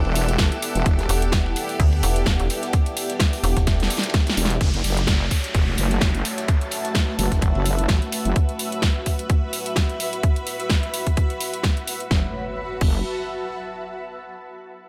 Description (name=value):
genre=bass house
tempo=128 BPM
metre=4/4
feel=swing 55% on 16ths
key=F# phrygian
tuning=A4 = 441 Hz
part: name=dark analog pad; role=sustained chords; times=0.0-12.3 s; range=A3 to F#5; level=-34 LUFS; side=equal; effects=chorus, sidechain pumping
part: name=wobble bass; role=bass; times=0.0-1.1, 4.4-8.3, 12.1-13.0 s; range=E1 to A1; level=-25 LUFS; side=equal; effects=chorus, tube saturation, sidechain pumping
part: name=compact cocktail drum kit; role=drums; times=0.0-8.2 s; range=hi-hat, ride cymbal, snare drum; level=-39 LUFS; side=equal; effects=none
part: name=granular cloud pad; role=texture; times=0.0-13.9 s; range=E4 to B5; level=-32 LUFS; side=equal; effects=built-in reverb, sidechain pumping
part: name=big-room dance drum kit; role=drums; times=0.2-12.9 s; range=crash cymbal, hi-hat, snare drum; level=-29 LUFS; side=equal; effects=none
part: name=electronic kick drum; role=drums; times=0.4-12.9 s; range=none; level=-22 LUFS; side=equal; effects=none
part: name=metallic FM bass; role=bass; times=1.1-3.9 s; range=E1 to D2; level=-24 LUFS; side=equal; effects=sidechain pumping
part: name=downlifter and impact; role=sound effects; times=4.6-8.4, 12.3-14.0 s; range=none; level=-35 LUFS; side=equal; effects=none
room=light reverb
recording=none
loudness=-22 LUFS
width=mono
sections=0.0-4.6 A section; 4.6-12.1 B section; 12.1-14.0 C section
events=drop 0.0-4.6; drum fill 3.7-4.6; filter sweep on analog synth pad 4.6-12.1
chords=0.0 Emadd9; 4.6 F#m